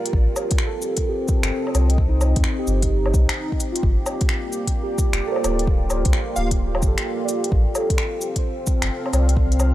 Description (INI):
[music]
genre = future garage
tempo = 130 BPM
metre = 4/4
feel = swing 66% on 16ths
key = unclear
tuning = A4 = 441 Hz
[part]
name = muted felt-like synth keys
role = accompaniment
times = 0.0-9.6 s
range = Eb4 to D5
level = -28 LUFS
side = right 4 dB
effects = chorus, phaser, sidechain pumping, analog delay
[part]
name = dark analog pad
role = sustained chords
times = 0.0-9.7 s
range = Bb3 to F5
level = -27 LUFS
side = left 2 dB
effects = chorus, sidechain pumping
[part]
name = warm sub bass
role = bass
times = 0.1-9.7 s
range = D1 to F2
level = -20 LUFS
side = equal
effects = sidechain pumping
[part]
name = electronic kick drum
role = drums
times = 0.1-9.5 s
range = none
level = -21 LUFS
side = equal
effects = none
[part]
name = organic electronic drum kit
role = drums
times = 0.1-9.7 s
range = cabasa, finger snaps, hi-hat, woodblock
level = -27 LUFS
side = left 1 dB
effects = none
[part]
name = plucky unison lead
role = melody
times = 6.4-6.5 s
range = F5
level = -34 LUFS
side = equal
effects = analog delay
[sound]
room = digital ambience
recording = dry, gritty hardware recording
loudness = -18 LUFS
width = side -14 dB against mid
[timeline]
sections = 0.0-9.7 A section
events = none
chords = 0.1 F7/A; 2.0 Cm; 3.8 Gm7; 7.5 F/A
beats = | 0.13 0.59 1.05 1.52 | 1.98 2.44 2.90 3.36 | 3.82 4.29 4.75 5.21 | 5.67 6.13 6.59 7.05 | 7.52 7.98 8.44 8.90 | 9.36